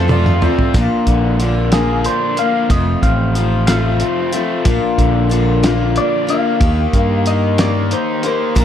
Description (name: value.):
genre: folk rock and heartland rock.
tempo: 61 BPM (dotted quarters).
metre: 6/8.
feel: straight.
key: unclear.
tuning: A4 = 439 Hz.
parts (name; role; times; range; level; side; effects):
pedal steel guitar; second line; 0.0-0.6 s; A4; -27 LUFS; right 2 dB; none.
picked steel-string acoustic guitar; accompaniment; 0.0-8.6 s; F2 to G4; -20 LUFS; left 6 dB; none.
raw garage guitar; riff; 0.0-8.6 s; F2 to A4; -20 LUFS; right 1 dB; overdrive.
picked electric bass; bass; 0.0-8.6 s; F1 to G2; -17 LUFS; right 1 dB; none.
overdriven reed electric piano; accompaniment; 0.1-0.8 s; F4 to D5; -25 LUFS; right 7 dB; none.
cloth-damped thuddy drum kit; drums; 0.1-8.6 s; hi-hat, kick drum, snare drum, toms; -17 LUFS; equal; none.
tambourine; percussion; 0.3, 8.6 s; none; -40 LUFS; right 7 dB; none.
clean electric guitar; melody; 1.7-8.6 s; Ab4 to F5; -20 LUFS; left 2 dB; phaser.
room: light reverb.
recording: dark, warm production, faint mains hum.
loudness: -13 LUFS.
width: side -9 dB against mid.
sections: 0.7-8.6 A section.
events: drum fill 0.0-0.7; clean electric guitar solo 0.7-8.6.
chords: 0.0 F; 0.7 Bb; 2.7 F; 4.7 Bb; 6.6 Eb.